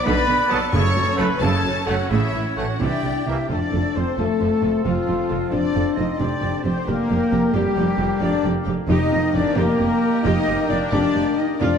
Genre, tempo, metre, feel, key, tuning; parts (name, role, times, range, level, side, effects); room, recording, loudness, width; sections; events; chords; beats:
cinematic, heroic adventure film score; 89 BPM (dotted quarters); 6/8; straight; F mixolydian from 3.5 s; A4 = 440 Hz
warm symphonic violin section; melody; 0.0-11.8 s; E4 to E5; -32 LUFS; left 4 dB
rich symphonic violin section; second line; 0.0-11.8 s; A4 to C#6; -33 LUFS; left 5 dB
clear symphonic viola section; accompaniment; 0.0-11.8 s; C#3 to Bb4; -30 LUFS; right 1 dB
dark trumpet section; stabs; 0.0-11.8 s; E4 to C#5; -28 LUFS; equal
flute section; second line; 0.1-11.8 s; F4 to E5; -29 LUFS; left 1 dB
rich studio cello section; bass; 0.1-11.7 s; F2 to C3; -26 LUFS; right 3 dB
rich symphonic double bass section; bass; 0.1-11.7 s; F1 to C2; -26 LUFS; right 3 dB
clear trombone section; sustained chords; 0.5-11.8 s; D3 to C4; -32 LUFS; right 4 dB
mellow French horn section; sustained chords; 0.5-11.8 s; F3 to A4; -22 LUFS; left 3 dB
timpani; percussion; 0.7-1.4, 8.9-9.5 s; F2 to F#2; -29 LUFS; left 2 dB
wet scoring stage reverb, RT60 1.8 s; dark, warm production; -18 LUFS; side -7 dB against mid
0.0-3.5 A section; 3.5-11.8 B section
0.0 Bm; 0.7 F#m; 2.1 A; 2.8 C7; 3.5 F; 6.2 Gm/F; 8.9 Eb/F
0.06 | 0.74 1.42 | 2.11 2.81 | 3.50 4.18 | 4.85 5.53 | 6.20 6.87 | 7.55 8.22 | 8.89 9.56 | 10.24 10.92 | 11.60